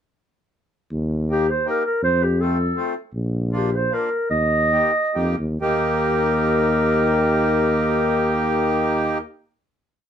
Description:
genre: alpine folk, alpine dance band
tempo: 127-161 BPM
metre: 3/4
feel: straight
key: Eb major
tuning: A4 = 440 Hz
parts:
  - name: mellow tuba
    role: bass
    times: 0.9-9.2 s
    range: Bb1 to F2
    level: -23 LUFS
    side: equal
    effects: none
  - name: mellow clarinet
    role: melody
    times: 1.3-9.2 s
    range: G4 to Eb5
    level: -21 LUFS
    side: equal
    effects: none
  - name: accordion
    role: accompaniment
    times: 1.3-9.2 s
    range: A3 to G4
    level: -22 LUFS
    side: equal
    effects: none
room: light reverb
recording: none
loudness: -18 LUFS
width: side -9 dB against mid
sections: 0.9-5.6 A section; 5.6-8.4 final chord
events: slowing down 3.2-5.6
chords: 0.9 Eb; 2.0 F; 3.2 Bb; 4.3 Eb

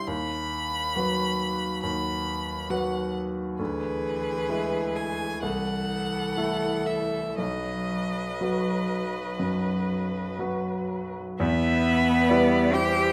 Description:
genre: classical, slow romantic movement for piano quartet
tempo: 56-69 BPM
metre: 4/4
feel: rubato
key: unclear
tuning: A4 = 440 Hz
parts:
  - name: clear violin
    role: melody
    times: 0.0-13.1 s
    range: B4 to B5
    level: -34 LUFS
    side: equal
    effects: none
  - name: bright concert grand piano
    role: accompaniment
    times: 0.0-13.1 s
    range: B1 to C5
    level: -31 LUFS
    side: equal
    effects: none
  - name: rich cello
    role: second line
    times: 1.0-13.1 s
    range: E3 to G4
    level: -31 LUFS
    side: equal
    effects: none
  - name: rich violin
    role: second line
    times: 1.0-13.1 s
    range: F#4 to E5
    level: -35 LUFS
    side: equal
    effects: none
room: moderate recital hall reverb, RT60 1.4 s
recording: close, detailed microphones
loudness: -27 LUFS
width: mono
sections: 0.0-11.4 A section; 11.4-13.1 A section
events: none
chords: 0.1 B/D#; 3.6 E7/D; 5.4 Am/C; 7.4 B; 11.4 Em

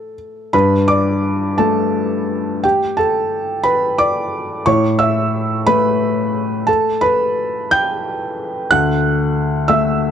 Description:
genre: neoclassical minimalist piano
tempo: 59 BPM (dotted quarters)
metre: 6/8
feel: uneven beats, rubato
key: unclear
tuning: A4 = 440 Hz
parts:
  - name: felt-muted upright piano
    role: solo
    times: 0.0-10.1 s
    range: D2 to G6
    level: -14 LUFS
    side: equal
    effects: none
room: little or no reverb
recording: close, detailed microphones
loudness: -14 LUFS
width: side -8 dB against mid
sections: 0.5-10.1 A section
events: none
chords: 0.0 N.C.; 0.5 Gadd9; 4.7 A7; 8.7 D

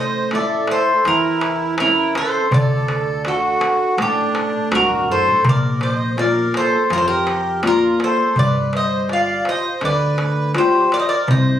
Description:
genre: greek folk, Greek bouzouki band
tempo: 82 BPM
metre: 4/4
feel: straight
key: G minor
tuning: A4 = 440 Hz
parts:
  - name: Greek bouzouki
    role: melody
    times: 0.0-11.6 s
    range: G4 to F5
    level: -19 LUFS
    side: left 1 dB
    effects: plate reverb
  - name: accordion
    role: second line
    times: 0.0-11.6 s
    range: D4 to D5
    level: -22 LUFS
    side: right 2 dB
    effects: light tremolo tuning
  - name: fingerpicked steel-string acoustic guitar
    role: accompaniment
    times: 0.0-11.6 s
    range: C3 to E5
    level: -22 LUFS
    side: left 2 dB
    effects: none
  - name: upright bass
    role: bass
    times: 0.0-11.6 s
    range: C1 to F2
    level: -28 LUFS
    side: equal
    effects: none
  - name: darbuka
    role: percussion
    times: 0.3-11.6 s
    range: none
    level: -21 LUFS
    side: equal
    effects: none
room: moderate small room reverb, RT60 0.5 s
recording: recorded on a phone in the room, club reverb, compression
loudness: -15 LUFS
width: side -10 dB against mid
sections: 0.0-11.6 A section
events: none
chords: 0.0 A; 2.5 D; 5.4 Bb; 8.4 G7

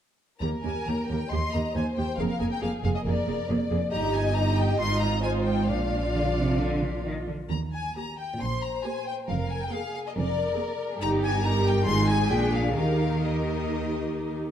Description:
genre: quick classical-period movement for string orchestra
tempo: 136 BPM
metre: 4/4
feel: uneven beats, rubato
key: Eb major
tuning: A4 = 442 Hz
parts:
  - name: clear studio violin section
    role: melody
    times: 0.4-14.4 s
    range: D5 to C6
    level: -32 LUFS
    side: left 4 dB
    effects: none
  - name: warm studio violin section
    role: second line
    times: 0.4-14.3 s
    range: G4 to Eb5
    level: -33 LUFS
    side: left 3 dB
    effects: none
  - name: rich studio viola section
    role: accompaniment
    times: 0.4-14.4 s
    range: Bb3 to Ab4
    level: -30 LUFS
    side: right 1 dB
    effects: none
  - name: clear studio cello section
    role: bass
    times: 0.4-14.4 s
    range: Eb2 to Eb3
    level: -30 LUFS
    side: right 2 dB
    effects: none
  - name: rich studio double bass section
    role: bass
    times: 0.4-14.4 s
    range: F1 to Eb2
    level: -30 LUFS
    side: right 2 dB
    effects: none
room: wet recital hall reverb, RT60 1.6 s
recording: dark, warm production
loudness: -24 LUFS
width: side -10 dB against mid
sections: 0.4-14.5 A section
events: none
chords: 0.4 Eb; 2.2 Bb7/F; 3.9 Eb/G; 4.8 Fm7/Ab; 5.7 Bb; 7.5 Eb; 9.3 Bb7/F; 11.0 Eb/G; 11.9 Fm7/Ab; 12.3 Bb7; 12.8 Eb

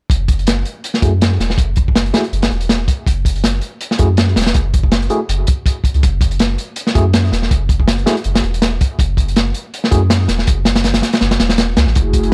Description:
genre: drum and bass, jungle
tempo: 162 BPM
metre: 4/4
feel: swing 55% on 16ths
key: F# minor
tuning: A4 = 440 Hz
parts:
  - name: soft dub sub bass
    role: bass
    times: 0.1-12.3 s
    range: E1 to F#2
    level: -19 LUFS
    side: equal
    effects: tube saturation
  - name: crunchy breakbeat drum kit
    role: drums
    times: 0.1-12.3 s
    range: hi-hat, kick drum, snare drum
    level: -17 LUFS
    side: equal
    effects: none
  - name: overdriven tine electric piano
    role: stabs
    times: 1.0-10.0 s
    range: A3 to G#4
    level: -25 LUFS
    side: equal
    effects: low-pass filter, dub echo
  - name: airy breathy pad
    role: sustained chords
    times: 12.0-12.3 s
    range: A3 to G#4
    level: -20 LUFS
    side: equal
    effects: chorus, vintage 12-bit sampler grit
room: small room ambience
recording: dry, gritty hardware recording, cassette tape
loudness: -15 LUFS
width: mono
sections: 0.1-12.3 A section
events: filter sweep on tine electric piano 0.1-12.3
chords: 0.1 F#7(no3)

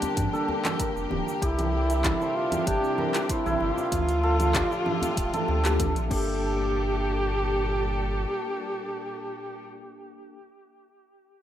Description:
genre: organic downtempo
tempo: 96 BPM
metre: 4/4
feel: straight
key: G dorian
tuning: A4 = 442 Hz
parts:
  - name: mellow duduk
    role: melody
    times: 0.0-9.7 s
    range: D4 to G4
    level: -30 LUFS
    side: right 1 dB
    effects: tape echo
  - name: mellow tine electric piano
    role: accompaniment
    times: 0.0-10.4 s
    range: A3 to A5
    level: -35 LUFS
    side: left 3 dB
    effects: medium stereo tremolo, sidechain pumping, digital delay
  - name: warm symphonic string section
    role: sustained chords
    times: 0.0-9.7 s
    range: A2 to A4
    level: -33 LUFS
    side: equal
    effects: sidechain pumping
  - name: santur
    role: arpeggios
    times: 0.0-9.2 s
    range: D4 to G5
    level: -32 LUFS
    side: right 1 dB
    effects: digital delay
  - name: deep house drum kit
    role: drums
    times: 0.0-6.2 s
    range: cabasa, congas, crash cymbal, handclaps, hi-hat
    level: -32 LUFS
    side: right 2 dB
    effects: overdrive
  - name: djembe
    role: percussion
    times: 0.0-6.2 s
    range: none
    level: -41 LUFS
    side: left 3 dB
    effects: none
  - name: warm sub bass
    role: bass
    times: 0.2-8.3 s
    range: D1 to G2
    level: -28 LUFS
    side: equal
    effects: sidechain pumping
  - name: electronic kick drum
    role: drums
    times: 0.2-6.2 s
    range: none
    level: -31 LUFS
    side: equal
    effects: overdrive
room: moderate plate reverb, RT60 1.9 s, studio ambience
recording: rough home demo mix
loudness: -24 LUFS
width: side -11 dB against mid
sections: 0.0-6.4 A section; 6.4-8.9 B section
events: none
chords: 0.0 Gmadd9; 1.4 Cadd9; 3.9 Dm; 6.1 Gmadd9

